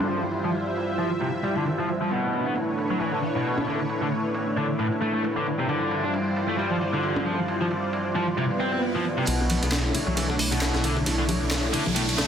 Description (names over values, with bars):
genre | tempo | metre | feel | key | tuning
breakbeat, breaks | 134 BPM | 4/4 | swing 58% on 16ths | B minor | A4 = 440 Hz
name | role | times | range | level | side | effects
lush unison pad | sustained chords | 0.0-12.3 s | G3 to E5 | -27 LUFS | equal | chorus, phaser, sidechain pumping
high-gain distorted guitar | riff | 0.0-12.3 s | A2 to D4 | -27 LUFS | equal | distortion, low-pass filter, digital delay
breakbeat sampler-style drum kit | drums | 0.0-12.3 s | hi-hat, kick drum, ride cymbal, snare drum | -32 LUFS | right 1 dB | high-pass filter on cymbals, low-pass filter on cymbals, high-pass filter on hats, low-pass filter on hats, high-pass filter on snare, low-pass filter on snare, high-pass filter on kick, low-pass filter on kick, high-pass filter on room, low-pass filter on room
swell and riser | sound effects | 8.5-12.3 s | none | -33 LUFS | right 2 dB | none
dark detuned saw bass | bass | 9.3-12.3 s | B1 | -28 LUFS | equal | tube saturation
bongos and congas | percussion | 9.4-12.3 s | none | -32 LUFS | left 2 dB | none
electronic handclaps | drums | 9.7-11.6 s | none | -35 LUFS | equal | none
room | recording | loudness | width
moderate lush hall reverb, RT60 2.6 s | dense, heavily limited modern master | -23 LUFS | side -8 dB against mid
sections
0.0-9.3 A section; 9.3-12.3 B section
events
swell 8.5-9.3; build-up 9.3-12.3; filter sweep on distorted electric guitar 9.3-12.3; filter sweep 9.3-12.3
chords
0.0 Dm11 (rootless); 2.1 Bm11; 5.5 Dm11; 9.3 Bm11